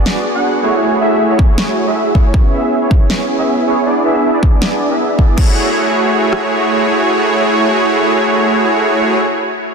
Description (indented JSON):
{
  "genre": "future bass",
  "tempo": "158 BPM",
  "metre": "4/4",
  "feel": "half-time",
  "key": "F# minor",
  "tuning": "A4 = 440 Hz",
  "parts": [
    { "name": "soft supersaw", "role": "riff", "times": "0.0-9.2 s", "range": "A3 to F#5", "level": "-12 LUFS", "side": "right 1 dB", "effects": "sidechain pumping, low-pass filter, tape echo" },
    { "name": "pop drum kit", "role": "drums", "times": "0.1-5.5 s", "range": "crash cymbal, snare drum", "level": "-22 LUFS", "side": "left 1 dB", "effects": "overdrive" },
    { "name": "pop drum kit", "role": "drums", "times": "1.4-6.4 s", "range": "kick drum, rim click", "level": "-11 LUFS", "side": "equal", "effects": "overdrive" }
  ],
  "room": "moderate huge ambient reverb, RT60 4.2 s",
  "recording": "dense, heavily limited modern master",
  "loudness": "-11 LUFS",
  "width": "side -5 dB against mid",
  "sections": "0.0-5.4 A section; 5.4-8.4 B section",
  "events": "filter sweep on supersaw synth 0.0-5.4",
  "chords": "0.0 G#m7b5; 0.6 F#m9; 2.3 C#m7; 3.9 E7; 5.4 F#m9",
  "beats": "0.06 0.44 | 0.82 1.20 1.58 1.96 | 2.34 2.72 3.10 3.48 | 3.86 4.24 4.62 5.00 | 5.38 5.76 6.14 6.52 | 6.90 7.28 7.66 8.04"
}